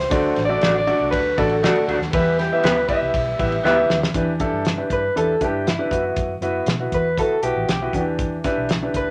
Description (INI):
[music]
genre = uptempo 1960s-style soul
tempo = 119 BPM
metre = 4/4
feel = straight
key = E minor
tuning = A4 = 440 Hz
[part]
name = electric guitar through a small old amp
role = melody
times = 0.0-9.1 s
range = E4 to E5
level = -24 LUFS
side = equal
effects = none
[part]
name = bright tonewheel organ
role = sustained chords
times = 0.0-4.1 s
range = D3 to G4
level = -34 LUFS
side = equal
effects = none
[part]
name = vintage muted fingered electric bass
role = bass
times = 0.0-9.1 s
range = A1 to B2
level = -30 LUFS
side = equal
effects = none
[part]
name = cloth-damped thuddy drum kit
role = drums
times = 0.0-9.1 s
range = hi-hat, kick drum, ride cymbal, snare drum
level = -27 LUFS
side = equal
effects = none
[part]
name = clear baby grand piano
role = accompaniment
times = 0.1-9.1 s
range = D3 to E5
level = -25 LUFS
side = equal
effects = none
[part]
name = electric guitar through a small old amp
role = stabs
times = 0.6-3.8 s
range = A3 to G4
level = -26 LUFS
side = equal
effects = none
[sound]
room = wet small room reverb, RT60 0.5 s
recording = none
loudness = -20 LUFS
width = mono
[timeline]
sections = 0.0-4.1 A section; 4.1-9.1 B section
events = drum fill 3.6-4.1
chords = 0.1 D; 2.1 Em; 4.1 Em7; 5.9 Bsus4/F#; 7.9 Em7